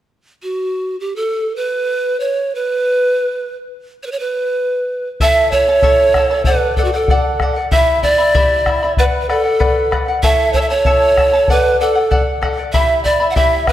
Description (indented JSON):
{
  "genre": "andean folk, Andean ensemble",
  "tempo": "96 BPM",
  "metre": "2/4",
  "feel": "straight",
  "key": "unclear",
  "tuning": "A4 = 441 Hz",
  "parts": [
    { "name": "breathy mellow pan flute", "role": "melody", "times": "0.4-13.7 s", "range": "F#4 to F#5", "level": "-15 LUFS", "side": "right 1 dB", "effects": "none" },
    { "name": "charango", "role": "accompaniment", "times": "5.2-13.7 s", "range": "E4 to B5", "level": "-18 LUFS", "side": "left 2 dB", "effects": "none" },
    { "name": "bombo", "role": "percussion", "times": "5.2-13.7 s", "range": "none", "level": "-18 LUFS", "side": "left 1 dB", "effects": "none" }
  ],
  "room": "wet scoring stage reverb, RT60 1.5 s",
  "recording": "none",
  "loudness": "-13 LUFS",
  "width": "side -12 dB against mid",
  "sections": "0.2-5.2 A section; 5.2-13.7 B section",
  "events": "none",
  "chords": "0.2 N.C.; 5.2 A; 6.5 D; 7.7 Em; 9.0 Bm; 10.2 A; 11.5 D; 12.7 Em"
}